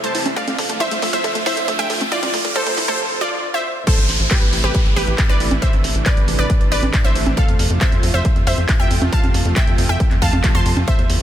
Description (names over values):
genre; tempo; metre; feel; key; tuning
uplifting trance; 137 BPM; 4/4; straight; A minor; A4 = 440 Hz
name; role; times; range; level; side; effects
wide unison pluck; melody; 0.0-11.2 s; F4 to C6; -21 LUFS; right 1 dB; sidechain pumping, digital delay
wide unison pluck; arpeggios; 0.0-3.0 s; A3 to A4; -28 LUFS; left 1 dB; cassette tape, sidechain pumping, digital delay
tight sequencer bass; bass; 0.0-11.2 s; A1 to F2; -21 LUFS; equal; sidechain pumping, high-pass filter
techno drum kit; drums; 0.0-11.2 s; congas, crash cymbal, handclaps, hi-hat; -24 LUFS; right 1 dB; sidechain pumping on hats, sidechain pumping on perc, sidechain pumping on cymbals
riser and downlifter; sound effects; 0.0-7.4 s; none; -26 LUFS; equal; none
electronic kick drum; drums; 0.4-11.0 s; none; -17 LUFS; equal; distortion, high-pass filter on kick, high-pass filter on room
room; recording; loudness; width
light reverb, digital ambience; dense, heavily limited modern master, high-pass filter; -15 LUFS; side -11 dB against mid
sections
0.0-3.9 A section; 3.9-11.2 B section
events
build-up 0.0-3.9; drum fill 0.0-3.0; riser 0.0-3.0; break 3.0-3.9; drop 3.9-11.2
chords
0.4 Dm; 3.9 Am; 7.4 F